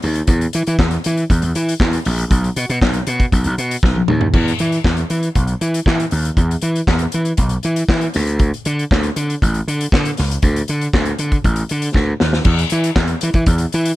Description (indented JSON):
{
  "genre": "disco",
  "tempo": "118 BPM",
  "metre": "4/4",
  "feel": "straight",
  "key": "unclear",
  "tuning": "A4 = 439 Hz",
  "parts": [
    { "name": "gritty slap bass", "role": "bass", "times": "0.0-13.9 s", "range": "A1 to E3", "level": "-17 LUFS", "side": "equal", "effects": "overdrive" },
    { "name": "vintage drum kit", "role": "drums", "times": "0.0-14.0 s", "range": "crash cymbal, handclaps, hi-hat, kick drum, snare drum, toms", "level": "-18 LUFS", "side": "equal", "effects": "none" }
  ],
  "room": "little or no reverb",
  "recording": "none",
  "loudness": "-15 LUFS",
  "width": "side -16 dB against mid",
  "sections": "0.0-4.3 A section; 4.3-12.5 B section; 12.5-14.0 C section",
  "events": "drum fill 3.8-4.3, 12.0-12.5",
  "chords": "none",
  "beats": "| 0.28 0.79 1.29 1.80 | 2.31 2.82 3.32 3.83 | 4.34 4.85 5.36 5.86 | 6.37 6.88 7.39 7.89 | 8.40 8.91 9.42 9.92 | 10.43 10.94 11.45 11.95 | 12.46 12.96 13.47"
}